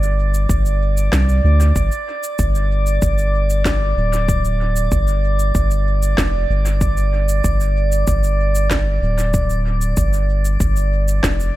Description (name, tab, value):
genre	ambient dub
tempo	95 BPM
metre	4/4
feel	straight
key	unclear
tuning	A4 = 440 Hz
part	soft dub sub bass	bass	0.0-11.5 s	D1 to D2	-16 LUFS	equal	none
part	electronic cabasa and snare drum	drums	0.0-11.5 s	none	-26 LUFS	equal	dub echo
part	drifting glass-harmonics texture	texture	0.0-11.6 s	D5	-23 LUFS	right 2 dB	chorus, built-in reverb
part	electronic kick drum	drums	0.5-11.4 s	none	-21 LUFS	equal	none
room	little or no reverb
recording	echo-heavy mix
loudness	-15 LUFS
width	side -16 dB against mid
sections	0.0-11.6 A section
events	none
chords	0.0 G5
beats	0.49 1.13 1.76 | 2.39 3.02 3.65 4.28 | 4.92 5.55 6.18 6.81 | 7.44 8.07 8.71 9.34 | 9.97 10.60 11.23